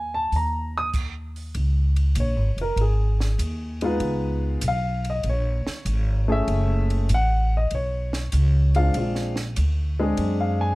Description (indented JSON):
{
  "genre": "jazz piano trio",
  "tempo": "97 BPM",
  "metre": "4/4",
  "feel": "swing 69% on 8ths",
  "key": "unclear",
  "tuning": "A4 = 440 Hz",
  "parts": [
    { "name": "warm upright piano", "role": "melody", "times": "0.0-10.8 s", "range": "Ab3 to Eb6", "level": "-26 LUFS", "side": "left 1 dB", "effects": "none" },
    { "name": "upright bass", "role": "bass", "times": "0.0-10.8 s", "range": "F1 to Gb2", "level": "-22 LUFS", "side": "equal", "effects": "none" },
    { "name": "compact cocktail drum kit", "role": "drums", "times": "0.3-10.4 s", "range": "crash cymbal, hi-hat, kick drum, ride cymbal, snare drum", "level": "-35 LUFS", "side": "right 1 dB", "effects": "none" }
  ],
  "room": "light reverb",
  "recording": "dark, warm production",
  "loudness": "-21 LUFS",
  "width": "side -20 dB against mid",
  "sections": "0.0-1.6 A section; 1.6-10.8 B section",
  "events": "stop 0.9-1.6; upright piano solo 1.6-10.8",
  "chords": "0.0 N.C.; 1.6 Db5; 4.0 Db7; 6.5 Gbm7; 8.9 Bb7"
}